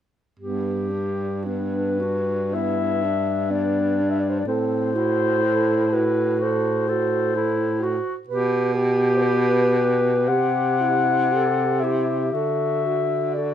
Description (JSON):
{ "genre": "classical, lyrical piece for single-reed quartet", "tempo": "53-65 BPM", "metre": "4/4", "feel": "rubato", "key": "G major", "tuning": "A4 = 440 Hz", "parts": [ { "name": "mellow alto saxophone", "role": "second line", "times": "0.4-13.5 s", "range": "B3 to B4", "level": "-27 LUFS", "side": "right 8 dB", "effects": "none" }, { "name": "mellow clarinet", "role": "accompaniment", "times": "0.4-13.5 s", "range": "C4 to A4", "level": "-26 LUFS", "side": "left 3 dB", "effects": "none" }, { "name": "mellow baritone saxophone", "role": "bass", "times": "0.4-13.5 s", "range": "G2 to D3", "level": "-25 LUFS", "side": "right 2 dB", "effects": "none" }, { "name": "dark clarinet", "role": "melody", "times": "1.4-13.5 s", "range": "B4 to F#5", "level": "-24 LUFS", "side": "left 5 dB", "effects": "none" } ], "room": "light reverb", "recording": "none", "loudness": "-19 LUFS", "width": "side -10 dB against mid", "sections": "0.4-13.5 A section", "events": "none", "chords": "0.4 G; 4.5 F#dim/A; 8.3 G/B; 10.3 C; 12.3 D" }